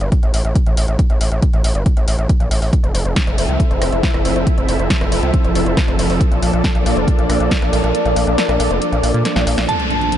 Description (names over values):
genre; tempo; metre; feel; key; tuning
uplifting trance; 138 BPM; 4/4; straight; unclear; A4 = 440 Hz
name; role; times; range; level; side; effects
gritty driven synth bass; bass; 0.0-9.7 s; F1 to Bb2; -18 LUFS; equal; distortion, sidechain pumping
punchy analog drum machine; drums; 0.0-10.2 s; hi-hat, rim click, snare drum; -23 LUFS; equal; none
electronic kick drum; drums; 0.1-7.6 s; none; -16 LUFS; equal; none
lush unison pad; sustained chords; 3.0-10.2 s; F3 to E5; -19 LUFS; equal; chorus, phaser, sidechain pumping
glassy synth bell; second line; 9.7-10.2 s; A5; -19 LUFS; right 2 dB; chorus, tremolo, analog delay
impact; sound effects; 9.7-10.2 s; none; -22 LUFS; equal; none
room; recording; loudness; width
light reverb, digital ambience; nothing above 10.8 kHz; -14 LUFS; side -11 dB against mid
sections
0.0-9.7 A section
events
kick drops out 7.9-9.7; drum fill 9.3-9.7; band accent 9.6; impact 9.7-10.2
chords
0.0 Gsus2; 2.7 Fmaj7; 6.2 Bbmaj7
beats
0.12 0.56 | 0.99 1.43 1.86 2.29 | 2.73 3.16 3.60 4.03 | 4.47 4.90 5.34 5.77 | 6.21 6.64 7.08 7.51 | 7.95 8.38 8.82 9.25 | 9.69 10.12